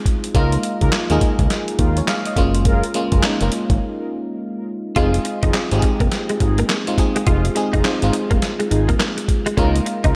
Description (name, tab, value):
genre	R&B, new jack swing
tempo	104 BPM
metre	4/4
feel	swing 62% on 16ths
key	unclear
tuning	A4 = 439 Hz
part	FM electric piano	accompaniment	0.0-10.2 s	Ab3 to F5	-24 LUFS	equal	chorus, slapback echo
part	dusty soul sampler-style drum kit	drums	0.1-10.1 s	handclaps, hi-hat, kick drum, snare drum	-22 LUFS	equal	none
part	mellow synth brass	stabs	0.3-10.2 s	Eb4 to Bb4	-30 LUFS	equal	chorus, delay, slapback echo
part	fat analog bass	bass	0.3-10.1 s	F1 to Eb2	-21 LUFS	equal	none
part	direct-recorded clean electric guitar	riff	5.0-10.1 s	Ab3 to F4	-28 LUFS	equal	ensemble chorus
room	moderate concert hall reverb, RT60 1.9 s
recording	big arena sound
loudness	-19 LUFS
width	mono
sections	0.0-10.2 A section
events	break 3.8-5.0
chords	0.3 Db69; 2.4 Gbmaj9; 5.0 Fm7; 9.6 Db69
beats	| 0.35 0.92 1.50 2.08 | 2.65 3.23 3.81 4.38 | 4.96 5.54 6.12 6.69 | 7.27 7.85 8.42 9.00 | 9.58 10.15